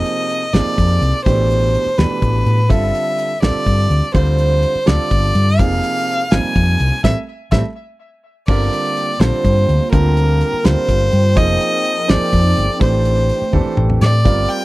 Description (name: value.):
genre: electric jazz fusion.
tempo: 83 BPM (dotted quarters).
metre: 6/8.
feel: straight.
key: unclear.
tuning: A4 = 440 Hz.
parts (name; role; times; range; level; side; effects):
clear violin; melody; 0.0-14.6 s; Bb4 to Ab5; -19 LUFS; equal; none.
clear baby grand piano; accompaniment; 0.0-14.6 s; B2 to D5; -22 LUFS; right 5 dB; none.
damped 70s drum kit; drums; 0.1-14.6 s; crash cymbal, hi-hat, kick drum, snare drum, toms; -16 LUFS; equal; none.
hollow-body short-scale fingered electric bass; bass; 0.5-14.5 s; F1 to A2; -15 LUFS; equal; none.
hollow soft pad; sustained chords; 8.8-14.6 s; F3 to G5; -27 LUFS; equal; chorus.
room: little or no reverb.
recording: dry, close 1970s-style studio recording.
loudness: -13 LUFS.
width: side -18 dB against mid.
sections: 0.0-8.5 A section; 8.5-14.6 A section.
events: band accent 7.0-8.5; drum fill 7.8-8.5, 13.5-14.3; grand piano fill 7.8-8.5.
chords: 0.0 Fm7; 1.3 Am11; 2.7 G9sus4; 5.6 Fm11; 7.0 Am7; 8.5 Gm7; 11.4 Fm11; 12.8 Am7.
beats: 0.54 | 1.26 1.98 | 2.70 3.42 | 4.15 4.87 | 5.59 6.31 | 7.04 7.76 | 8.48 9.20 | 9.92 10.64 | 11.37 12.09 | 12.81 13.53 | 14.25.